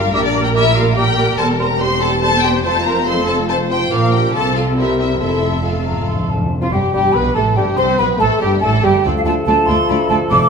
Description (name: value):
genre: quick classical-period movement for symphony orchestra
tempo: 142 BPM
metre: 3/4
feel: straight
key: F major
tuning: A4 = 435 Hz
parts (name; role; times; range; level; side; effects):
- warm symphonic violin section; melody; 0.0-10.4 s; F4 to C6; -21 LUFS; left 4 dB; none
- mellow cor anglais; second line; 0.0-10.5 s; F4 to C5; -24 LUFS; right 3 dB; none
- warm symphonic violin section; second line; 0.0-10.4 s; D4 to C5; -25 LUFS; left 4 dB; none
- dark bassoon; accompaniment; 0.0-10.5 s; F3 to C4; -26 LUFS; equal; none
- warm studio viola section; accompaniment; 0.0-10.4 s; A3 to C5; -22 LUFS; equal; none
- dark chamber double bass section; bass; 0.0-10.4 s; E1 to D2; -22 LUFS; right 4 dB; none
- rich studio cello section; bass; 0.0-10.4 s; D2 to C3; -22 LUFS; right 2 dB; none
- hollow small flute group; second line; 0.1-10.5 s; F5 to D6; -20 LUFS; right 1 dB; none
- mellow French horn section; sustained chords; 0.1-10.5 s; F3 to Bb4; -24 LUFS; left 5 dB; none
- timpani; percussion; 5.2-6.5, 10.3-10.5 s; F2; -22 LUFS; left 1 dB; none
room: wet recital hall reverb, RT60 1.5 s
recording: minimal, uncompressed stereo recording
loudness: -13 LUFS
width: side -5 dB against mid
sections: 0.0-6.5 A section; 6.5-10.5 B section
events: timpani fill 5.2-6.5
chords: 0.1 Gm/Bb; 1.4 C7/E; 2.7 F; 3.9 Bb; 4.3 F/C; 4.8 C7; 5.2 F; 6.5 G9; 7.8 C5; 9.1 Dm